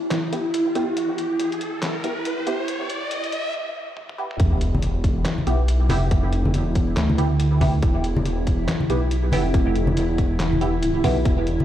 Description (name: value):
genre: deep dubstep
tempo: 140 BPM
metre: 4/4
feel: swing 59% on 16ths, half-time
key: E phrygian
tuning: A4 = 440 Hz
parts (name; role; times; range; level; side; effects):
- granular cloud pad; sustained chords; 0.0-11.6 s; E4; -27 LUFS; right 2 dB; built-in reverb
- riser and sub drop; sound effects; 0.2-6.1 s; none; -29 LUFS; equal; none
- trip hop sampler-style drum kit; drums; 0.1-11.6 s; handclaps, hi-hat, snare drum, toms; -30 LUFS; left 2 dB; none
- filtered dub chord stab; stabs; 0.3-11.1 s; B3 to G4; -29 LUFS; right 1 dB; phaser, ensemble chorus, dub echo
- dark detuned saw bass; bass; 4.4-11.6 s; E1 to D2; -21 LUFS; equal; none
- electronic kick drum; drums; 4.4-11.4 s; none; -20 LUFS; equal; none
- congas; percussion; 4.7-11.6 s; none; -26 LUFS; left 2 dB; none
room: light reverb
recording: played on a big sound system in a bare room, large studio reverb, high-pass filter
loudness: -19 LUFS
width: side -12 dB against mid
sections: 0.0-4.4 A section; 4.4-11.6 B section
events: build-up 0.0-4.4; riser 0.2-3.5; filter sweep on synth stab 0.0-4.4; filter sweep 0.0-4.4; break 3.5-4.4; drum fill 4.0-4.4; drop 4.4-11.6; impact 4.4-6.1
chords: 0.0 N.C.; 4.4 E5